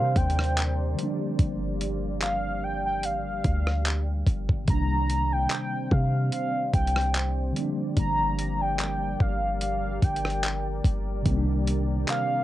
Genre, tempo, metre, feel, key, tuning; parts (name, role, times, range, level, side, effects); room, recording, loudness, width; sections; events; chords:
contemporary R&B; 73 BPM; 4/4; swing 54% on 16ths; C minor; A4 = 440 Hz
warm velvety synth lead; melody; 0.0-12.4 s; F5 to Bb5; -29 LUFS; equal; chorus
mellow tine electric piano; accompaniment; 0.0-12.4 s; C3 to D4; -32 LUFS; equal; medium stereo tremolo, cassette tape
deep dark ambient pad; sustained chords; 0.0-12.4 s; G3 to G5; -36 LUFS; equal; chorus, built-in reverb, cassette tape
warm 808-style bass; bass; 0.0-12.0 s; G1 to C3; -28 LUFS; equal
dusty soul sampler-style drum kit; drums; 0.2-12.3 s; handclaps, hi-hat, kick drum, rim click; -26 LUFS; equal
light reverb; home recording on cassette; -24 LUFS; side -14 dB against mid
0.0-12.4 A section
0.0 Cm7; 1.0 Gm7; 4.7 Cm7; 7.6 Gm7; 11.3 Cm7